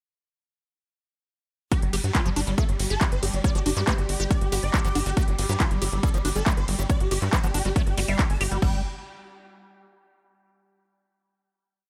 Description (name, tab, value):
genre	psychedelic trance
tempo	139 BPM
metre	4/4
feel	straight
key	unclear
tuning	A4 = 441 Hz
part	swarming rave lead	melody	1.7-8.8 s	G3 to A5	-36 LUFS	equal	chorus, phaser, sidechain pumping, dub echo
part	overtone-sweeping drone	sustained chords	2.5-8.6 s	G3 to G4	-40 LUFS	equal	chorus, built-in reverb, phaser, sidechain pumping
part	liquid acid bass	riff	1.7-8.8 s	F3 to G4	-34 LUFS	equal	phaser, sidechain pumping
part	techno drum kit	drums	1.7-8.7 s	crash cymbal, kick drum	-26 LUFS	equal	overdrive, studio reverb
part	techno drum kit	drums	1.7-8.6 s	handclaps, hi-hat, ride cymbal	-33 LUFS	equal	overdrive, studio reverb
part	tight sequencer bass	bass	1.8-8.8 s	G1 to G2	-29 LUFS	equal	none
room	little or no reverb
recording	none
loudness	-24 LUFS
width	mono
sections	1.7-8.6 drop; 8.6-10.3 final note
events	drop 1.7-8.6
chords	1.7 G5; 8.6 N.C.